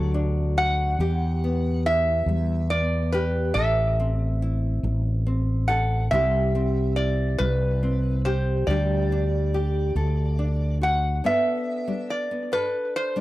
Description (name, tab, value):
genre	acoustic folk duo or small band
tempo	47 BPM (dotted quarters)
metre	6/8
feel	straight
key	G major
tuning	A4 = 439 Hz
part	metal-body resonator slide guitar	melody	0.0-13.2 s	B4 to F#5	-25 LUFS	right 1 dB	none
part	nylon-string guitar	accompaniment	0.0-13.2 s	G2 to A4	-29 LUFS	left 1 dB	none
part	fretless electric bass	bass	0.0-11.2 s	A1 to E2	-23 LUFS	equal	tube saturation
room	light reverb, small room reverb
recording	dry, gritty hardware recording, transformer saturation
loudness	-21 LUFS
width	side -16 dB against mid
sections	0.0-11.2 A section; 11.2-13.2 A section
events	none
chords	0.0 D; 1.0 Em; 3.6 Am; 6.1 C; 8.7 Dsus4; 10.0 D; 11.2 Gadd9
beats	| 1.00 2.28 | 3.56 4.84 | 6.12 7.40 | 8.69 9.96 | 11.24 12.53